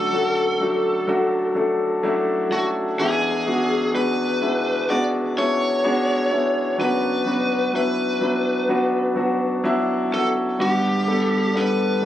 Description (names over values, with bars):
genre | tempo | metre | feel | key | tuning
pop | 63 BPM | 4/4 | straight | unclear | A4 = 443 Hz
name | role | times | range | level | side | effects
lead guitar through a small cranked amp | melody | 0.0-12.1 s | F#4 to D5 | -24 LUFS | left 2 dB | overdrive
clear concert grand piano | accompaniment | 0.0-12.1 s | F#1 to F#5 | -20 LUFS | equal | none
room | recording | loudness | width
light reverb | recorded on a phone in the room, club reverb, compression | -19 LUFS | side -12 dB against mid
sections
0.0-12.1 A section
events
none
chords
0.0 D; 3.0 E7; 6.8 Bm/F#; 10.6 Gmaj7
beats
0.12 1.08 2.03 | 2.98 3.94 4.89 5.84 | 6.79 7.74 8.70 9.65 | 10.60 11.55